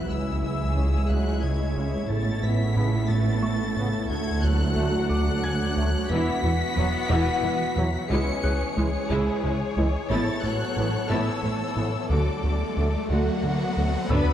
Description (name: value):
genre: cinematic, hybrid orchestral and electronic film score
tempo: 60 BPM (dotted quarters)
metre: 6/8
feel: straight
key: unclear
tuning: A4 = 439 Hz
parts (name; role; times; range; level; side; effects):
- warm symphonic violin section; melody; 0.0-14.3 s; F#5 to C#7; -34 LUFS; left 2 dB; none
- warm symphonic violin section; second line; 0.0-14.3 s; F#4 to F#5; -34 LUFS; left 4 dB; none
- warm symphonic viola section; accompaniment; 0.0-14.3 s; E3 to F#4; -31 LUFS; equal; none
- evolving wavetable pad; sustained chords; 0.0-14.3 s; E3 to E5; -33 LUFS; equal; chorus, built-in reverb
- warm symphonic cello section; bass; 0.0-14.3 s; C#2 to B3; -31 LUFS; right 2 dB; none
- warm symphonic double bass section; bass; 0.0-14.2 s; E1 to D2; -29 LUFS; right 2 dB; none
- impact, riser and sub drop; sound effects; 0.0-0.1, 11.8-14.3 s; none; -33 LUFS; left 1 dB; none
- bright grand piano; texture; 0.0-14.3 s; E5 to A6; -41 LUFS; left 2 dB; none
- warm French horn section; sustained chords; 0.1-14.3 s; D3 to F#4; -34 LUFS; left 3 dB; none
- rubbery square bass; riff; 0.1-14.3 s; C#2 to A3; -28 LUFS; equal; none
- clear trombone section; sustained chords; 0.8-14.3 s; A2 to C#4; -36 LUFS; right 2 dB; none
room: moderate concert hall reverb, RT60 2.2 s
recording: dark, warm production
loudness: -22 LUFS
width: side -10 dB against mid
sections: 0.0-14.1 A section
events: riser 11.8-14.1; impact 14.1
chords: 0.1 C#m; 2.1 Aadd9; 4.1 D; 6.1 Esus2; 8.1 C#m; 10.1 Aadd9; 12.1 D